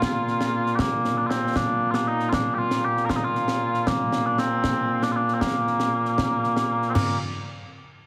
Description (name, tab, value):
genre	scottish traditional, Scottish pipe music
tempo	78 BPM (dotted quarters)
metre	6/8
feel	straight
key	Bb major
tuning	A4 = 441 Hz
part	mellow small bagpipes	melody	0.0-7.2 s	Bb2 to Bb4	-25 LUFS	equal	none
part	concert snare drum, concert bass drum, concert toms and clash cymbals	drums	0.0-7.1 s	none	-30 LUFS	equal	none
room	moderate recital hall reverb, RT60 1.7 s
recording	heavily compressed radio sound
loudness	-24 LUFS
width	mono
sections	0.0-6.9 A section; 6.9-8.1 B section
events	none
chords	none